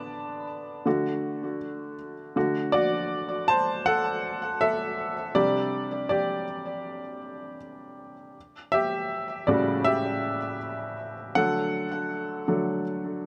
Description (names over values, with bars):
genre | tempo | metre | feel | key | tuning
pop | 80 BPM | 4/4 | straight | unclear | A4 = 440 Hz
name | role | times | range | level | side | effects
clear grand piano | solo | 0.0-13.3 s | A2 to A5 | -28 LUFS | equal | digital delay
room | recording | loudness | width
light reverb | none | -27 LUFS | mono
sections
0.0-13.3 A section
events
grand piano solo 0.0-13.3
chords
0.0 Bm7/D; 0.9 D; 5.4 Csus2; 8.4 A7; 11.4 D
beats
0.11 0.86 1.61 | 2.36 3.11 3.86 4.61 | 5.36 6.11 6.86 7.61 | 8.36 9.11 9.86 10.61 | 11.36 12.11 12.86